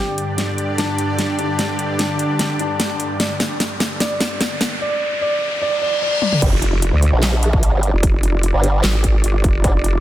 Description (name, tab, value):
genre	heavy wobble dubstep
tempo	149 BPM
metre	4/4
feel	half-time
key	unclear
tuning	A4 = 442 Hz
part	felt-muted upright piano	melody	0.0-6.4 s	D4 to D5	-23 LUFS	equal	tape echo
part	supersaw pad	sustained chords	0.0-10.0 s	G2 to D5	-24 LUFS	equal	sidechain pumping, low-pass filter
part	riser, reverse cymbal and impact	sound effects	2.3-8.0 s	none	-26 LUFS	left 1 dB	none
part	dubstep drum kit	drums	0.2-9.9 s	crash cymbal, handclaps, hi-hat, snare drum, toms	-22 LUFS	equal	none
part	formant-sweep wobble bass	bass	6.4-9.7 s	G1 to Bb1	-16 LUFS	equal	chorus, overdrive
part	electronic kick drum	drums	6.4-9.7 s	none	-18 LUFS	equal	distortion
part	vowel-sweep wobble bass	bass	6.5-10.0 s	F1 to D2	-17 LUFS	equal	chorus, overdrive
room	light reverb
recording	dense, heavily limited modern master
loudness	-16 LUFS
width	side -13 dB against mid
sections	0.0-6.4 A section; 6.4-10.0 B section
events	build-up 0.0-6.4; drum fill 0.0-4.8, 6.2; riser 2.3-6.4; reverse cymbal 5.6-6.4; drop 6.4-10.0; impact 6.4-8.0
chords	0.0 G5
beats	0.38 0.78 1.19 | 1.59 1.99 2.39 2.80 | 3.20 3.60 4.00 4.41 | 4.81 5.21 5.62 6.02 | 6.42 6.82 7.23 7.63 | 8.03 8.43 8.84 9.24 | 9.64